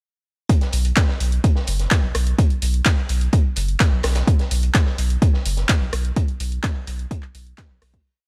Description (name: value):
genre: acid house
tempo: 127 BPM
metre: 4/4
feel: straight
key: unclear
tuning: A4 = 440 Hz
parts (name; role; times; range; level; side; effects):
- crunchy breakbeat drum kit; drums; 0.5-7.9 s; hi-hat, snare drum; -36 LUFS; equal; high-pass filter on hats, small room ambience, high-pass filter on snare, high-pass filter on room
- electronic kick drum; drums; 0.5-8.0 s; none; -20 LUFS; equal; overdrive, small room ambience
- punchy analog drum machine; drums; 0.5-8.0 s; handclaps, hi-hat, rim click; -28 LUFS; equal; overdrive, small room ambience
- warm sub bass; bass; 0.7-8.0 s; F#1 to B1; -23 LUFS; equal; tube saturation, sidechain pumping
room: little or no reverb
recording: dry, gritty hardware recording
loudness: -20 LUFS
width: mono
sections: 0.5-8.1 groove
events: fade-out 5.5-8.1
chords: none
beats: | 0.50 0.97 1.44 1.91 | 2.39 2.86 3.33 3.80 | 4.28 4.75 5.22 5.69 | 6.17 6.64 7.11 7.58